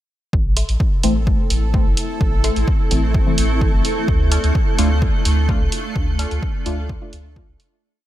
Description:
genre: dub techno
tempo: 128 BPM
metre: 4/4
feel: straight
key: A minor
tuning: A4 = 437 Hz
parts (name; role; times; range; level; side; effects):
- granular cloud pad; sustained chords; 1.5-7.8 s; A3 to A4; -25 LUFS; right 1 dB; built-in reverb, ensemble chorus, sidechain pumping
- soft dub sub bass; bass; 0.3-7.6 s; G1 to D2; -19 LUFS; equal; sidechain pumping
- electronic kick drum; drums; 0.3-7.5 s; none; -19 LUFS; equal; overdrive
- bubbling stepped-filter texture; texture; 0.3-7.8 s; A4; -32 LUFS; right 2 dB; chorus, built-in reverb, sidechain pumping
- warbly dusty pluck; riff; 0.6-6.3 s; A4 to F6; -35 LUFS; left 4 dB; chorus, cassette tape, sidechain pumping, dub echo
- electronic hi-hat; drums; 0.6-7.7 s; none; -26 LUFS; right 2 dB; none
- deep mellow chord stab; stabs; 1.0-7.1 s; E3 to F4; -25 LUFS; left 1 dB; chorus, phaser, sidechain pumping, dub echo
room: light reverb, digital ambience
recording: none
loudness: -16 LUFS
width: side -13 dB against mid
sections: 0.3-7.8 groove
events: fade-out 5.3-7.8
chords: 0.3 Am; 4.1 Dm

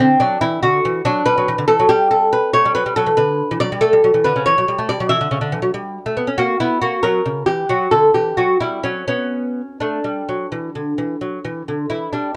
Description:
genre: classical, baroque-style dance for lute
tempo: 82-96 BPM (dotted quarters)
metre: 12/8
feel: rubato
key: B minor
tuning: A4 = 439 Hz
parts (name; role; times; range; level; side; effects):
- lute; solo; 0.0-12.3 s; C#3 to E5; -18 LUFS; equal; none
room: light reverb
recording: dark, warm production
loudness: -18 LUFS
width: mono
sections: 0.0-11.9 A section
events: none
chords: 0.0 D9; 1.3 G; 3.8 A; 6.4 F#/A#; 7.7 Dadd9; 8.4 Em69/F#; 9.1 Bm

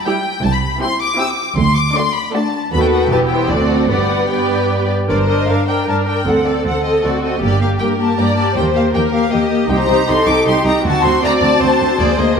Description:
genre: quick classical-period movement for string orchestra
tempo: 157 BPM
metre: 3/4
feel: straight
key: G major, G minor from 5.1 s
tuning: A4 = 440 Hz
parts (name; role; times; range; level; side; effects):
- warm symphonic violin section; melody; 0.0-12.4 s; D5 to E6; -20 LUFS; left 3 dB; none
- warm symphonic violin section; second line; 0.1-12.4 s; F#4 to G5; -19 LUFS; left 2 dB; none
- warm symphonic viola section; accompaniment; 0.1-12.4 s; G3 to Bb4; -17 LUFS; equal; none
- rich symphonic cello section; bass; 0.4-12.4 s; C2 to G2; -21 LUFS; right 2 dB; none
- warm symphonic double bass section; bass; 0.4-12.2 s; E1 to D#2; -21 LUFS; right 3 dB; none
room: wet scoring stage reverb, RT60 1.8 s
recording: none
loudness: -13 LUFS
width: side -6 dB against mid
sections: 0.0-5.1 A section; 5.1-12.4 B section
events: none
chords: 0.4 C; 1.6 D; 2.7 B7/D#; 3.1 Em; 3.5 D7; 3.9 G; 5.1 Gm; 6.3 D7; 7.4 Gm; 8.6 Eb; 9.7 Cm; 10.8 D7; 12.0 Bb7/D

